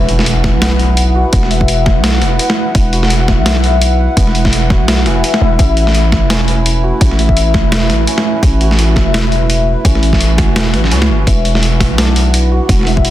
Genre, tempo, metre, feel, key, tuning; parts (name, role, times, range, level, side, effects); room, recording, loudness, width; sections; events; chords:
half-time drum and bass; 169 BPM; 4/4; swing 58% on 16ths, half-time; A4 = 440 Hz
dark analog pad; sustained chords; 0.0-13.1 s; A3 to F#5; -21 LUFS; right 4 dB; chorus, sidechain pumping
santur; arpeggios; 0.0-13.1 s; E3 to E5; -19 LUFS; left 5 dB; tape echo
growling 808-style bass; bass; 0.0-13.1 s; E1 to C#2; -13 LUFS; equal
impact; sound effects; 0.0-1.3 s; -22 LUFS; right 1 dB
boom bap sampler-style drum kit; drums; 0.1-13.1 s; hi-hat, snare drum; -16 LUFS; right 1 dB
electronic kick drum; drums; 0.4-13.0 s; -13 LUFS; equal; overdrive
little or no reverb; dense, heavily limited modern master; -9 LUFS; side -13 dB against mid
0.0-13.1 A section
impact 0.0-1.3
0.0 E5; 5.6 A; 11.3 E5